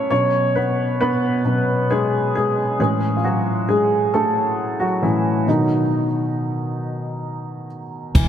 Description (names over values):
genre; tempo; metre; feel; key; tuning
six-eight pop ballad; 45 BPM (dotted quarters); 6/8; straight; unclear; A4 = 440 Hz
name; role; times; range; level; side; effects
warm upright piano; accompaniment; 0.0-8.3 s; A2 to E5; -18 LUFS; equal; lush chorus
upright bass; bass; 8.1-8.3 s; E1; -17 LUFS; equal; none
jazz brush drum kit; drums; 8.1-8.3 s; crash cymbal, kick drum; -16 LUFS; equal; none
room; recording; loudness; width
moderate lush hall reverb, RT60 3.0 s; bright 1980s-style digital production; -17 LUFS; side -9 dB against mid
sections
0.0-8.2 A section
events
upright piano solo 0.0-8.2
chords
0.1 Bsus2; 2.8 A; 5.5 B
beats
| 0.11 1.45 | 2.79 4.13 | 5.47 6.81 | 8.15